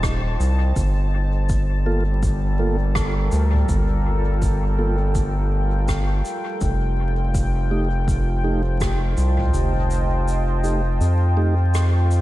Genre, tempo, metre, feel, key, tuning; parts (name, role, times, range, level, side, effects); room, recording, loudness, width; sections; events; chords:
ambient dub; 82 BPM; 4/4; swing 59% on 16ths; G minor; A4 = 440 Hz
deep dark ambient pad; sustained chords; 0.0-12.2 s; G3 to A5; -27 LUFS; equal; chorus, built-in reverb
round analog bass; bass; 0.0-12.2 s; Eb1 to F2; -19 LUFS; equal; tube saturation
electronic kick drum; drums; 0.0-9.0 s; -24 LUFS; equal; studio reverb
soft-mallet drum kit; drums; 0.0-12.2 s; rim click, shaker, toms; -29 LUFS; equal; studio reverb, dub echo
mellow tonewheel organ; stabs; 1.9-11.5 s; A3 to A4; -30 LUFS; right 2 dB; slow rotary speaker, dub echo
studio reverb; vinyl crackle; -18 LUFS; side -16 dB against mid
0.0-12.2 A section
kick drops out 9.5-12.2
0.0 F7; 0.8 Gm9; 6.6 F7